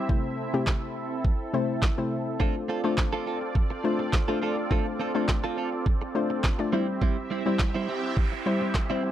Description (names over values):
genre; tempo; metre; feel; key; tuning
dance-pop; 104 BPM; 4/4; straight; D minor; A4 = 440 Hz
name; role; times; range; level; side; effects
filtered supersaw swell; sustained chords; 0.0-9.1 s; C4 to E5; -32 LUFS; right 2 dB; sidechain pumping
hollow square pluck; accompaniment; 0.1-9.1 s; C3 to D5; -29 LUFS; left 3 dB; chorus, sidechain pumping
smooth R&B drum kit; drums; 0.1-8.9 s; handclaps, kick drum, snare drum; -25 LUFS; right 1 dB; none
direct-recorded clean electric guitar; riff; 2.4-9.1 s; G3 to A4; -31 LUFS; right 5 dB; wide subtle chorus
noise sweep; sound effects; 7.7-9.1 s; none; -38 LUFS; right 6 dB; none
room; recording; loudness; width
little or no reverb; dry, close 1970s-style studio recording; -24 LUFS; side -11 dB against mid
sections
0.0-9.1 A section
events
noise sweep 7.7-9.1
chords
0.1 Am/C; 2.4 Dm7; 6.7 C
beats
| 0.09 0.67 1.25 1.82 | 2.40 2.98 3.56 4.13 | 4.71 5.29 5.86 6.44 | 7.02 7.59 8.17 8.75